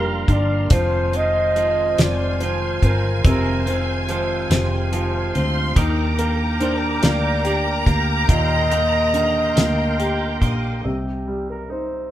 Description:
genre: six-eight pop ballad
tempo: 47 BPM (dotted quarters)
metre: 6/8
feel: straight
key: unclear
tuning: A4 = 440 Hz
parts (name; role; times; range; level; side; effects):
- breathy flugelhorn; melody; 0.0-12.1 s; G4 to Eb5; -23 LUFS; equal; none
- warm studio violin section; second line; 0.0-10.8 s; Eb5 to C6; -27 LUFS; equal; none
- clear concert grand piano; accompaniment; 0.0-12.1 s; Bb2 to G4; -26 LUFS; left 1 dB; none
- bright tonewheel organ; sustained chords; 0.0-10.8 s; Bb4 to D6; -29 LUFS; right 1 dB; chorus vibrato, slow rotary speaker
- clean electric guitar; arpeggios; 0.0-10.9 s; F2 to G4; -28 LUFS; right 5 dB; none
- vintage muted fingered electric bass; bass; 0.0-12.1 s; F1 to Eb2; -23 LUFS; equal; none
- damped 70s drum kit; drums; 0.3-10.6 s; hi-hat, kick drum, snare drum; -18 LUFS; equal; none
room: moderate stone room reverb, RT60 1.3 s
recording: band playing live in one room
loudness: -17 LUFS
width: side -12 dB against mid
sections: 0.0-10.8 A section; 10.8-12.1 B section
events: none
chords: 0.0 Gm7; 0.7 Fm7; 5.8 Ebmaj7; 10.8 Cm

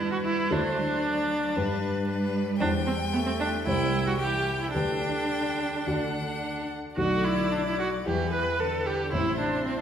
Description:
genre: quick classical-period movement for piano quartet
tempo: 112 BPM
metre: 4/4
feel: rubato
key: G major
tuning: A4 = 444 Hz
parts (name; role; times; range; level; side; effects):
- clear violin; melody; 0.0-9.8 s; B4 to G5; -33 LUFS; left 6 dB; none
- rich cello; second line; 0.0-9.8 s; C3 to A3; -33 LUFS; right 3 dB; none
- clear viola; accompaniment; 0.0-9.8 s; B3 to B4; -28 LUFS; right 2 dB; none
- dark baby grand piano; accompaniment; 0.0-9.8 s; A1 to D5; -30 LUFS; left 1 dB; none
room: wet recital hall reverb, RT60 1.4 s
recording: recorded in a church or concert hall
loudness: -25 LUFS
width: side -9 dB against mid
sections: 0.0-9.8 A section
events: none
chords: 0.0 G; 0.5 D7; 1.6 G; 2.6 C/E; 3.7 C; 4.7 G/D; 5.9 D; 7.0 Bm7; 8.1 Em; 9.1 Am7

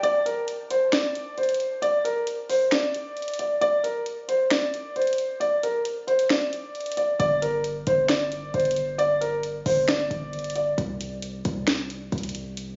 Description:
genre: hip hop, trap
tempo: 134 BPM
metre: 4/4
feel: half-time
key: G minor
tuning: A4 = 440 Hz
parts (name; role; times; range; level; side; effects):
- dark grand piano; melody; 0.0-10.8 s; Bb4 to D5; -26 LUFS; equal; none
- trap drum kit; drums; 0.0-12.7 s; finger snaps, hi-hat, snare drum; -30 LUFS; equal; none
- hard-hitting 808-style bass; bass; 7.2-12.8 s; G1 to C2; -34 LUFS; equal; none
room: little or no reverb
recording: recorded on a phone in the room, studio reverb, compression, nothing above 7.5 kHz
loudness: -25 LUFS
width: mono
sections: 0.0-12.8 A section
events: break 0.0-7.2, 10.8-12.8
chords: 0.0 N.C.; 7.2 G5; 10.8 N.C.

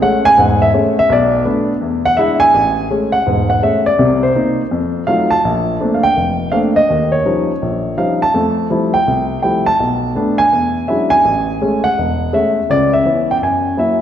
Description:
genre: solo jazz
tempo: 166 BPM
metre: 4/4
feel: swing 66% on 8ths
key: unclear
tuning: A4 = 437 Hz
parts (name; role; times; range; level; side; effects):
- warm baby grand piano; solo; 0.0-14.0 s; E1 to A5; -12 LUFS; equal; none
room: wet concert hall reverb, RT60 1.7 s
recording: recorded in a church or concert hall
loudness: -12 LUFS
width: side -10 dB against mid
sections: 0.0-2.5 A section; 2.5-14.0 B section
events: grand piano solo 0.0-2.5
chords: 0.0 Amaj7; 1.1 Bm7; 1.8 E7; 2.5 Amaj7; 4.0 Cm7; 4.7 F7b9; 5.4 Bbmaj9; 6.9 D#9; 8.3 Fmaj9; 9.8 Bm7; 10.5 E13; 11.2 Amaj7; 12.7 C#m7; 13.4 F#7

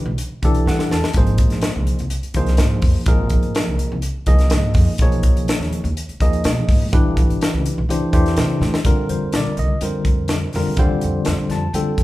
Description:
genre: electric jazz fusion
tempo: 125 BPM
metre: 4/4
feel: straight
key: F mixolydian from 8.9 s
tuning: A4 = 440 Hz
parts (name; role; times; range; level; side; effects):
- tine electric piano; accompaniment; 0.0-12.0 s; D3 to A5; -21 LUFS; left 1 dB; medium stereo tremolo
- upright bass; bass; 0.1-12.0 s; G1 to C3; -21 LUFS; equal; none
- crisp fusion drum kit; drums; 0.2-12.0 s; hi-hat, kick drum, snare drum; -19 LUFS; equal; none
room: moderate large studio reverb, RT60 1.2 s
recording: band playing live in one room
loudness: -16 LUFS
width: side -17 dB against mid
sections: 0.0-8.9 A section; 8.9-12.0 B section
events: tine electric piano fill 0.2-1.2, 11.3-12.0; drum fill 0.7-1.2, 8.6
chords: 0.0 Gadd9; 1.2 Abadd9; 5.0 Bmaj9; 6.9 Gadd9; 7.9 C69; 8.9 Fsus4

